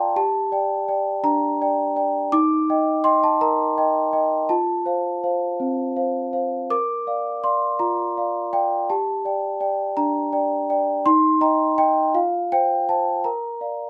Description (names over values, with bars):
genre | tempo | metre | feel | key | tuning
classical, lullaby for celesta | 55 BPM (dotted quarters) | 6/8 | straight | Bb major | A4 = 443 Hz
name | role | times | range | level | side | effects
large celesta | solo | 0.0-13.9 s | C4 to D6 | -22 LUFS | equal | none
room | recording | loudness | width
light reverb | close, detailed microphones | -21 LUFS | mono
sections
0.0-13.9 A section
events
none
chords
0.2 Gm; 2.3 Eb; 4.5 F; 6.7 Bb; 8.9 Gm; 11.1 Eb; 12.1 F5; 13.2 Bb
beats
| 0.15 1.24 | 2.32 3.41 | 4.50 5.61 | 6.71 7.80 | 8.89 9.97 | 11.05 12.14 | 13.24